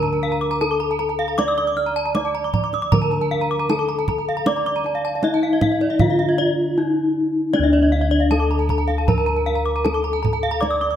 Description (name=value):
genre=Balinese gamelan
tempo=78 BPM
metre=4/4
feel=straight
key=D pelog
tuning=A4 = 440 Hz
part: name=gamelan-type bronze metallophone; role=melody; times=0.0-11.0 s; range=D4 to D5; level=-21 LUFS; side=left 1 dB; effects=none
part: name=gamelan-type bronze metallophone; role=arpeggios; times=0.0-10.8 s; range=D5 to F6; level=-26 LUFS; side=left 3 dB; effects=none
part: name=gamelan-type bronze metallophone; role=arpeggios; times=0.0-11.0 s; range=D5 to Eb6+35c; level=-27 LUFS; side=right 3 dB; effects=none
part: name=gamelan-type bossed gongs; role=bass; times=0.0-11.0 s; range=D2 to D5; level=-24 LUFS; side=left 1 dB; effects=none
part: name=kendang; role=percussion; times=0.0-10.9 s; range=none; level=-24 LUFS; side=right 3 dB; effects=none
room=moderate concert hall reverb, RT60 1.7 s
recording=close, detailed microphones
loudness=-17 LUFS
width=side -10 dB against mid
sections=0.0-11.0 A section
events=break 6.4-7.5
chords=none